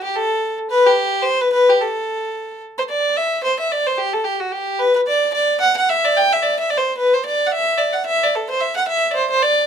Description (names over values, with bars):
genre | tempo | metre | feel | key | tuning
celtic folk | 220 BPM | 4/4 | swing 57% on 8ths | A dorian | A4 = 441 Hz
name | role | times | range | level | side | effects
rich fiddle | solo | 0.0-9.7 s | F#4 to G5 | -16 LUFS | equal | none
room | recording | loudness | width
wet small room ambience, RT60 0.5 s | minimal, uncompressed stereo recording | -16 LUFS | side -8 dB against mid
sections
0.0-2.9 A section; 2.9-9.7 B section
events
none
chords
none